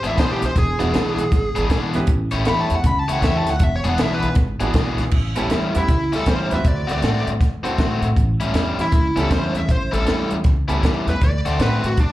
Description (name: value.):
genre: electric blues shuffle.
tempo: 158 BPM.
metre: 4/4.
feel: swing 64% on 8ths.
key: A mixolydian.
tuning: A4 = 440 Hz.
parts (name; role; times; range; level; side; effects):
smooth overdriven lead guitar; melody; 0.0-12.1 s; D4 to B5; -24 LUFS; equal; slapback echo.
overdriven semi-hollow guitar; riff; 0.0-11.9 s; A2 to C#5; -24 LUFS; left 2 dB; slapback echo.
upright bass; bass; 0.0-12.1 s; E1 to A2; -22 LUFS; equal; none.
compact cocktail drum kit; drums; 0.0-12.1 s; crash cymbal, hi-hat, kick drum, snare drum; -20 LUFS; equal; none.
bright upright piano; accompaniment; 0.8-2.1, 4.6-11.2 s; B3 to B4; -28 LUFS; right 5 dB; slapback echo.
room: light reverb.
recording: live gig heard through the venue's PA, club reverb.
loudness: -17 LUFS.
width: side -15 dB against mid.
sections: 0.0-5.1 A section; 5.1-12.1 B section.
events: lead electric guitar solo 0.0-5.1.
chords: 0.0 E7; 2.1 A7; 3.6 E7; 5.1 A7; 6.6 D7; 8.2 A7; 11.2 D7.